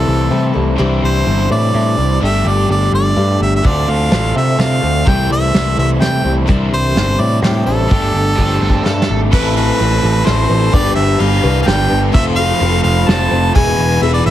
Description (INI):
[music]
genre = folk rock and heartland rock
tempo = 127 BPM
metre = 3/4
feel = straight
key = A minor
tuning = A4 = 440 Hz
[part]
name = clear harmonica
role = melody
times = 0.0-14.3 s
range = G4 to A5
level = -18 LUFS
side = right 1 dB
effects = none
[part]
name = picked twelve-string acoustic guitar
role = accompaniment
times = 0.0-14.3 s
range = A2 to C5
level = -21 LUFS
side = left 4 dB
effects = none
[part]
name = overdriven electric guitar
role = riff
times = 0.0-14.3 s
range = E2 to A4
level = -20 LUFS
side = right 1 dB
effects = none
[part]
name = picked electric bass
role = bass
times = 0.0-14.3 s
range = E1 to C3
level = -16 LUFS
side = equal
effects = none
[part]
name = soft brush drum kit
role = drums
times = 3.6-14.1 s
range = crash cymbal, hi-hat, kick drum, ride cymbal, snare drum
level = -17 LUFS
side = equal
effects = none
[part]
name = overdriven slide guitar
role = second line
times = 8.4-9.2 s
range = C4 to A4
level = -22 LUFS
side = right 4 dB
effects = none
[part]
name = mellow tonewheel organ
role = sustained chords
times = 9.3-14.3 s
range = C4 to C5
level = -25 LUFS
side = right 2 dB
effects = none
[sound]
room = little or no reverb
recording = heavily compressed radio sound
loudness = -11 LUFS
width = side -12 dB against mid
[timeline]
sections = 0.0-9.3 A section; 9.3-14.3 B section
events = drum fill 8.4-9.3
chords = 0.0 Am7/C; 0.8 Cadd9; 2.2 Gsus2; 3.6 Dm7; 5.1 Am7/C; 6.5 Cadd9; 7.9 Gsus2; 9.3 Amadd9; 10.7 G; 12.1 F; 13.6 E